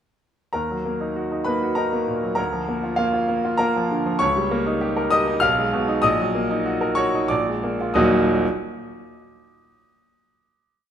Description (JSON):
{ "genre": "classical, virtuoso piano study", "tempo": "88-100 BPM", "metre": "3/4", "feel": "rubato", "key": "Eb minor", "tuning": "A4 = 441 Hz", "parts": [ { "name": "clear grand piano", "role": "solo", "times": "0.5-8.5 s", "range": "Eb1 to F6", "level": "-19 LUFS", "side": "equal", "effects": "none" } ], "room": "moderate concert hall reverb, RT60 1.9 s", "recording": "close, detailed microphones", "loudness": "-19 LUFS", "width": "side -9 dB against mid", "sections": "0.5-8.0 A section; 8.0-9.9 final chord", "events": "slowing down 3.3-8.0", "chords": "0.5 Ebm; 2.4 Bb/D; 4.2 Eb7/Db; 5.4 Abm/Cb; 6.0 Ebm/Bb; 7.3 Bb7; 8.0 Ebm" }